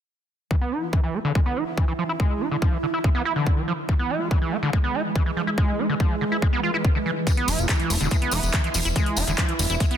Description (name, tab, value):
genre	psychedelic trance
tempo	142 BPM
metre	4/4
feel	straight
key	E major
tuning	A4 = 440 Hz
part	bubbling stepped-filter texture	sustained chords	0.5-10.0 s	E3 to E4	-29 LUFS	right 2 dB	chorus, built-in reverb, sidechain pumping
part	screaming distorted acid line	riff	0.5-10.0 s	D3 to F4	-26 LUFS	right 1 dB	distortion, chorus, auto-pan, sidechain pumping, digital delay
part	electronic kick drum	drums	0.5-9.9 s	none	-21 LUFS	equal	none
part	big-room dance drum kit	drums	7.3-10.0 s	handclaps, hi-hat	-28 LUFS	right 1 dB	overdrive, low-pass filter on hats, low-pass filter on snare
part	tambourine	percussion	7.3-9.9 s	none	-31 LUFS	left 3 dB	none
part	fat analog bass	bass	7.5-9.8 s	E1	-25 LUFS	equal	none
part	metallic wobble bass	second line	8.3-9.4 s	E3 to B3	-38 LUFS	right 3 dB	none
room	light reverb, digital ambience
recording	dense, heavily limited modern master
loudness	-21 LUFS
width	side -9 dB against mid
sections	0.5-10.0 A section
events	filter sweep on acid bass 0.5-10.0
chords	0.5 E5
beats	| 0.51 0.93 1.35 1.77 | 2.20 2.62 3.04 3.46 | 3.89 4.31 4.73 5.16 | 5.58 6.00 6.42 6.84 | 7.27 7.69 8.11 8.54 | 8.96 9.38 9.80